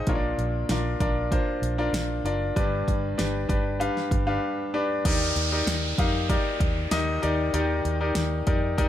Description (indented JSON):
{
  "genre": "piano-driven pop",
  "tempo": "96 BPM",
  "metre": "4/4",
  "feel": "straight",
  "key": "unclear",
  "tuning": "A4 = 444 Hz",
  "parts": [
    { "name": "bright concert grand piano", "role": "accompaniment", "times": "0.0-8.9 s", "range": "G2 to F5", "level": "-26 LUFS", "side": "left 2 dB", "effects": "none" },
    { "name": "vintage muted fingered electric bass", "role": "bass", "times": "0.1-8.9 s", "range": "F#1 to F2", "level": "-29 LUFS", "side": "right 1 dB", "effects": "none" },
    { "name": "deep house drum kit", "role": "drums", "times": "0.1-8.9 s", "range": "crash cymbal, hi-hat, kick drum, snare drum", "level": "-28 LUFS", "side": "right 1 dB", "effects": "none" },
    { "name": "downlifter", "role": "sound effects", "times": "5.1-8.9 s", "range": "none", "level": "-32 LUFS", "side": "right 1 dB", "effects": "none" }
  ],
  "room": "little or no reverb",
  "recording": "none",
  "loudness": "-23 LUFS",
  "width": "side -11 dB against mid",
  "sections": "0.0-5.0 A section; 5.0-8.9 B section",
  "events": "break 4.4-5.0",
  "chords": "0.1 Bb; 2.6 G; 5.0 Ebmaj7",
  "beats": "| 0.07 0.69 1.32 1.94 | 2.56 3.18 3.81 4.43 | 5.05 5.67 6.29 6.92 | 7.54 8.16 8.78"
}